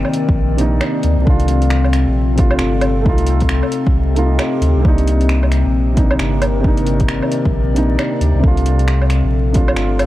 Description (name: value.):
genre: future garage.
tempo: 134 BPM.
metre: 4/4.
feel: swing 62% on 16ths.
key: C dorian.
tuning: A4 = 445 Hz.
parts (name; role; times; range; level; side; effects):
felt-muted upright piano; accompaniment; 0.0-10.1 s; C3 to F4; -20 LUFS; right 2 dB; vintage 12-bit sampler grit, sidechain pumping, analog delay.
warbly tape-like pad; sustained chords; 0.0-10.1 s; C3 to Eb5; -20 LUFS; left 4 dB; chorus, built-in reverb, sidechain pumping.
warm sub bass; bass; 0.0-10.1 s; G1 to D2; -16 LUFS; equal; sidechain pumping.
deep house drum kit; drums; 0.0-10.1 s; finger snaps, hi-hat, woodblock; -24 LUFS; right 1 dB; overdrive.
electronic kick drum; drums; 0.3-9.7 s; none; -15 LUFS; equal; overdrive.
room: digital ambience.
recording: vinyl crackle.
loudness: -13 LUFS.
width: side -15 dB against mid.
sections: 0.0-10.1 A section.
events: none.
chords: 0.0 Cm9; 1.3 Bbmaj7; 3.1 F7/C; 4.8 Cm9; 8.4 Bbmaj7.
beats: 0.37 0.81 | 1.26 1.71 2.16 2.60 | 3.05 3.50 3.95 4.40 | 4.84 5.29 5.74 6.19 | 6.63 7.08 7.53 7.98 | 8.43 8.87 9.32 9.77.